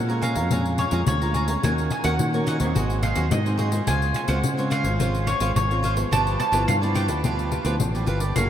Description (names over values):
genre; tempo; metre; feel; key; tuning
samba and choro; 107 BPM; 4/4; straight; unclear; A4 = 440 Hz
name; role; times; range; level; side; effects
bowl-back mandolin; melody; 0.0-8.5 s; Db5 to A5; -27 LUFS; right 1 dB; none
nylon-string guitar; accompaniment; 0.0-8.5 s; F2 to Ab4; -29 LUFS; left 1 dB; none
fingered electric bass; bass; 0.0-8.5 s; Gb1 to Eb3; -24 LUFS; right 1 dB; none
cavaquinho; accompaniment; 0.1-8.5 s; Eb4 to Bb5; -30 LUFS; right 3 dB; none
pandeiro; percussion; 0.1-8.5 s; none; -28 LUFS; left 4 dB; none
room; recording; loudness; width
moderate huge ambient reverb, RT60 7.1 s; in a vast, echoing space; -20 LUFS; side -10 dB against mid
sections
0.0-8.5 A section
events
none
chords
0.0 Bbm7; 1.6 Ebm7; 2.8 Ab7; 3.9 Dbmaj7; 6.1 G13